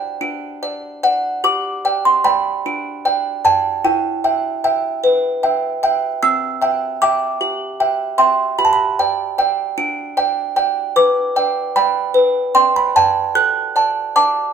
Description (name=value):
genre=classical, lullaby for music box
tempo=50 BPM (dotted quarters)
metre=6/8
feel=straight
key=G major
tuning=A4 = 440 Hz
part: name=music box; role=solo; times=0.0-14.5 s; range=C4 to F#6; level=-15 LUFS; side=right 2 dB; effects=none
room=moderate stone room reverb, RT60 1.0 s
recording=band playing live in one room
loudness=-15 LUFS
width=side -7 dB against mid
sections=0.0-1.4 A section; 1.4-14.5 B section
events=none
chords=0.2 D; 1.4 G; 3.8 Em; 6.2 C; 8.6 G; 11.0 G/B; 13.4 D/A